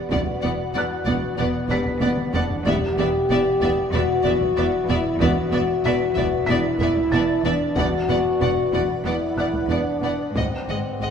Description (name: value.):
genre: cinematic, suspense film score.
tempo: 94 BPM.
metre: 4/4.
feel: straight.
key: E minor.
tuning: A4 = 440 Hz.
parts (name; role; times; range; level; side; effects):
glassy FM pad; sustained chords; 0.0-11.1 s; G#4 to F#5; -33 LUFS; equal; ensemble chorus, built-in reverb, phaser.
felt-muted upright piano; texture; 0.0-11.1 s; G4 to B6; -34 LUFS; equal; none.
rich studio violin section; melody; 0.1-11.1 s; E5 to F#5; -34 LUFS; left 4 dB; none.
rich studio violin section; second line; 0.1-11.1 s; D5 to D#5; -30 LUFS; equal; none.
clear studio viola section; accompaniment; 0.1-11.1 s; G#3 to B3; -30 LUFS; equal; none.
mellow French horn section; sustained chords; 0.1-11.1 s; B3 to G4; -23 LUFS; left 2 dB; none.
clear studio cello section; riff; 0.1-11.1 s; E2 to G#3; -31 LUFS; right 1 dB; none.
rich studio cello section; bass; 0.1-11.1 s; E2 to G#2; -29 LUFS; right 3 dB; none.
rich studio double bass section; bass; 0.1-11.1 s; E1 to G#1; -30 LUFS; right 3 dB; none.
taiko ensemble; drums; 0.1-11.0 s; none; -29 LUFS; equal; none.
timpani; percussion; 2.7-3.6 s; E2; -32 LUFS; left 1 dB; none.
room: wet scoring stage reverb, RT60 1.7 s.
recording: minimal, uncompressed stereo recording.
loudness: -19 LUFS.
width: side -7 dB against mid.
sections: 0.0-11.1 A section.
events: drum fill 2.0-2.7.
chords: 0.0 Bm/E; 2.7 Em7; 7.8 Bm/E; 10.4 G#7.